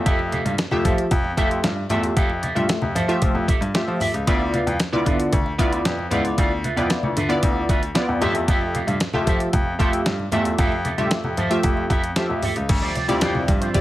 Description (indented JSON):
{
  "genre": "early-eighties boogie funk",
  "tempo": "114 BPM",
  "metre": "4/4",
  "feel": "straight",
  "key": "unclear",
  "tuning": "A4 = 440 Hz",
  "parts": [
    { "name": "funky polysynth comp", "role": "accompaniment", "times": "0.0-13.8 s", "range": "A3 to E5", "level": "-24 LUFS", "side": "equal", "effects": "chorus" },
    { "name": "bright grand piano", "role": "bass", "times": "0.0-13.8 s", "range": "C#2 to F3", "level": "-25 LUFS", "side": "left 1 dB", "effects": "none" },
    { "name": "electric guitar with an envelope filter", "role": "riff", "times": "0.1-13.8 s", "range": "F4 to F5", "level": "-29 LUFS", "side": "right 3 dB", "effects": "wide subtle chorus" },
    { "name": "detuned 8-bit digital drum machine", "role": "drums", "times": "0.1-13.8 s", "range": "crash cymbal, hi-hat, kick drum, snare drum", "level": "-23 LUFS", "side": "equal", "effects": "none" },
    { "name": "congas", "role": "percussion", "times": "0.1-13.8 s", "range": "none", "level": "-30 LUFS", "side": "left 1 dB", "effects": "none" },
    { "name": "warm analog pad", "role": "sustained chords", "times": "12.7-13.8 s", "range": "D3 to E5", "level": "-31 LUFS", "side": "right 1 dB", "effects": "chorus" }
  ],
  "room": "little or no reverb",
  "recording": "none",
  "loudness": "-18 LUFS",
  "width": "side -15 dB against mid",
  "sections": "0.0-12.7 A section; 12.7-13.8 B section",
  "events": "none",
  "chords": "0.0 Fmaj9; 4.3 Dm69; 8.2 Fmaj9; 12.7 Dm11"
}